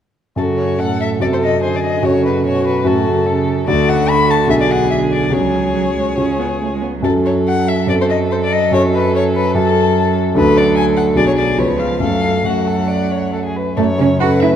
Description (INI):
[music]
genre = quick classical-period movement for piano quartet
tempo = 134-151 BPM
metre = 4/4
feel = rubato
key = F# minor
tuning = A4 = 441 Hz
[part]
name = rich violin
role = melody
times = 0.4-14.6 s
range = A4 to B5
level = -19 LUFS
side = left 6 dB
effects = none
[part]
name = rich cello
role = second line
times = 0.4-14.5 s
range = A2 to F#4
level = -21 LUFS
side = right 8 dB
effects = none
[part]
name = warm violin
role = second line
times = 0.4-14.6 s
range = F#4 to D5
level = -24 LUFS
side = left 1 dB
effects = none
[part]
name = clear concert grand piano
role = accompaniment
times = 0.4-14.6 s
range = B1 to A4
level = -15 LUFS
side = equal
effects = none
[sound]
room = wet recital hall reverb, RT60 1.8 s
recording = none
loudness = -13 LUFS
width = side -9 dB against mid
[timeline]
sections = 0.4-13.8 A section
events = none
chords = 0.4 F#m; 1.2 F#dim; 2.0 F#m; 3.7 D; 4.5 G#m7b5/B; 5.3 C#sus4; 6.2 C#; 7.0 F#m; 7.9 F#dim; 8.7 F#m; 10.4 D; 11.2 G#m7b5/B; 11.6 C#7; 12.0 F#m